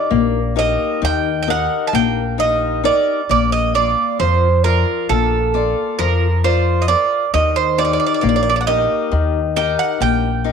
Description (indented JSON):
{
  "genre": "greek folk, Greek bouzouki band",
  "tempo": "134 BPM (eighths)",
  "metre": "9/8",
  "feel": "straight",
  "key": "unclear",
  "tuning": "A4 = 439 Hz",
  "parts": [
    { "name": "Greek bouzouki", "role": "melody", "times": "0.0-10.5 s", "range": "A4 to A5", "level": "-18 LUFS", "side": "right 7 dB", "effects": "none" },
    { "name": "picked swing-style acoustic guitar", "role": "accompaniment", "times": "0.0-10.5 s", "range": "Eb3 to D5", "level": "-20 LUFS", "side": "left 13 dB", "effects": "none" },
    { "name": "upright bass", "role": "bass", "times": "0.1-10.5 s", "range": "Bb1 to F2", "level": "-20 LUFS", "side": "left 1 dB", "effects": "none" }
  ],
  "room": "moderate spring reverb, RT60 1.4 s, small room ambience",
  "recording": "1960s-style stereo with parts hard left and right",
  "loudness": "-14 LUFS",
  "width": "side -6 dB against mid",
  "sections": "0.0-10.5 A section",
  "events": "speeding up 0.0-10.5",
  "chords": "0.0 Eb; 3.3 Bb; 7.3 Eb"
}